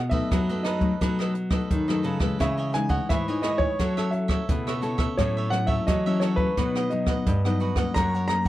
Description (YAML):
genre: samba and choro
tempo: 86 BPM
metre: 4/4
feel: straight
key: unclear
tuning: A4 = 440 Hz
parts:
  - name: nylon-string guitar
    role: accompaniment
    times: 0.0-8.5 s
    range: F#2 to A4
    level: -29 LUFS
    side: left 4 dB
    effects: none
  - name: nylon-string guitar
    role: bass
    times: 0.0-8.5 s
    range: F#2 to F#3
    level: -27 LUFS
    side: equal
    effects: none
  - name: warm concert grand piano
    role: melody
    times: 0.1-8.5 s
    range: B4 to A#5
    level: -28 LUFS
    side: right 1 dB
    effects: none
  - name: cavaquinho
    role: accompaniment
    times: 0.1-8.5 s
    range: D#4 to F#5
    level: -33 LUFS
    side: right 4 dB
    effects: none
  - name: jazz brush drum kit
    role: drums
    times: 0.1-8.5 s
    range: hi-hat, kick drum, rim click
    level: -27 LUFS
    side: equal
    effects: none
room: little or no reverb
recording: none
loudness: -22 LUFS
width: side -15 dB against mid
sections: 0.0-8.5 A section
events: none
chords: 0.0 B7; 2.4 C#madd9; 3.8 F#m7; 5.2 A6; 6.6 B; 8.0 F#